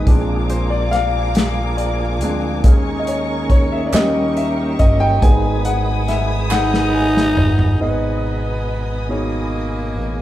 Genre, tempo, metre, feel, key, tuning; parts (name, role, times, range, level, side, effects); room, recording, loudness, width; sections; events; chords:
slow gospel; 46 BPM (dotted quarters); 6/8; straight; G# minor; A4 = 441 Hz
warm concert grand piano; accompaniment; 0.0-10.2 s; G#2 to G#5; -21 LUFS; left 1 dB
bright tonewheel organ; sustained chords; 0.0-10.2 s; B2 to D#5; -27 LUFS; right 3 dB; slow rotary speaker, chorus vibrato
dark studio string section; sustained chords; 0.0-10.2 s; D#4 to D#6; -28 LUFS; equal
fingered electric bass with an envelope filter; bass; 0.0-10.2 s; G1 to D#2; -21 LUFS; equal
warm soul drum kit; drums; 0.1-7.8 s; hi-hat, kick drum, snare drum, toms; -16 LUFS; equal
group handclap; percussion; 3.9-6.9 s; -28 LUFS; right 6 dB
raspy alto saxophone; melody; 6.5-10.2 s; A#3 to D#4; -21 LUFS; equal
moderate large studio reverb, RT60 0.9 s; band playing live in one room; -15 LUFS; side -13 dB against mid
0.0-7.8 A section; 7.8-10.2 B section
grand piano solo 0.0-7.8; drum fill 6.5-7.8
0.1 A#7; 2.6 D#7sus4; 3.9 D#7; 5.2 G#m